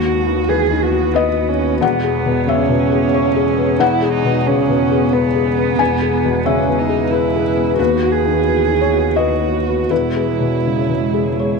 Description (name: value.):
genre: neoclassical piano and strings.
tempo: 80-92 BPM.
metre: 3/4.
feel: rubato.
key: unclear.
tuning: A4 = 440 Hz.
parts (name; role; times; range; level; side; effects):
dark cello; second line; 0.0-11.6 s; B3 to G#4; -19 LUFS; right 14 dB; none.
felt-muted upright piano; accompaniment; 0.0-11.6 s; D#2 to G#5; -17 LUFS; left 8 dB; none.
soft additive organ-like pad; sustained chords; 0.0-11.6 s; G#3 to C#5; -24 LUFS; right 1 dB; ensemble chorus, built-in reverb.
warm double bass; bass; 0.0-11.6 s; E1 to D#2; -23 LUFS; right 3 dB; none.
room: moderate echo chamber reverb, RT60 1.9 s, studio reverb.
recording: 1960s-style stereo with parts hard left and right.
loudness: -14 LUFS.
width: side -4 dB against mid.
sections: 0.0-11.6 A section.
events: none.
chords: 0.0 B/D#; 1.8 C#m7/E; 7.8 B/D#; 9.9 C#m7/E.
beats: 0.49 1.16 | 1.82 2.48 3.15 | 3.81 4.47 5.13 | 5.80 6.46 7.12 | 7.79 8.47 9.17 | 9.91 10.65 11.38.